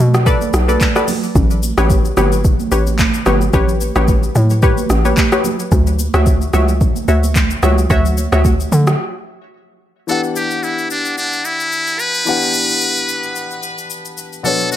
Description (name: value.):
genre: amapiano.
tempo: 110 BPM.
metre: 4/4.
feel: swing 55% on 16ths.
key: E dorian.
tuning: A4 = 437 Hz.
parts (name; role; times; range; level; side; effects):
hollow log drum bass; bass; 0.0-9.0 s; G1 to D3; -14 LUFS; equal; none.
smooth R&B drum kit; drums; 0.1-14.8 s; handclaps, hi-hat, kick drum, rim click, shaker; -17 LUFS; equal; none.
glassy wavetable pluck; stabs; 0.3-8.4 s; F#4 to E5; -20 LUFS; left 2 dB; chorus, digital delay.
congas; percussion; 0.4-8.9, 14.4-14.8 s; none; -22 LUFS; right 7 dB; none.
trumpet with metal mute; melody; 10.1-14.8 s; D4 to B4; -17 LUFS; equal; digital delay.
clear concert grand piano; accompaniment; 10.1-14.8 s; B2 to F#5; -22 LUFS; left 5 dB; none.
room: little or no reverb.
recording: none.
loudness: -13 LUFS.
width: side -12 dB against mid.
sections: 0.0-10.1 A section; 10.1-14.8 B section.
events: drop 0.0-10.1; break 9.0-10.1.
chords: 0.0 Bm7; 1.4 A9; 5.7 Dmaj9; 10.1 Em9.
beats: 0.26 0.81 | 1.35 1.90 2.45 2.99 | 3.54 4.08 4.63 5.17 | 5.72 6.26 6.81 7.36 | 7.90 8.45 8.99 9.54 | 10.08 10.63 11.17 11.72 | 12.26 12.81 13.36 13.90 | 14.45.